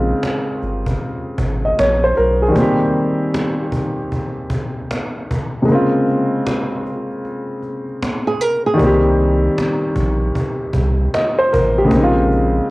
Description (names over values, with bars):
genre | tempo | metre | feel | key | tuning
lo-fi hip hop | 77 BPM | 4/4 | swing 66% on 16ths | unclear | A4 = 443 Hz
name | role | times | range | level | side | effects
warm upright piano | accompaniment | 0.0-12.7 s | C3 to Eb5 | -17 LUFS | equal | cassette tape
warm sub bass | bass | 0.0-2.5, 8.8-12.6 s | G1 to C2 | -19 LUFS | equal | none
cajon | drums | 0.2-12.4 s | none | -24 LUFS | equal | cassette tape
flamenco guitar | second line | 8.3-9.0 s | Ab4 to Bb4 | -19 LUFS | right 2 dB | cassette tape, analog delay
room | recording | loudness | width
light reverb | home recording on cassette | -15 LUFS | side -21 dB against mid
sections
0.0-8.8 A section; 8.8-12.7 A section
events
kick muted 5.7-8.8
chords
0.0 Bbm9; 2.6 Cm7; 5.7 Bbm9; 8.8 Cm7; 11.9 Bbm9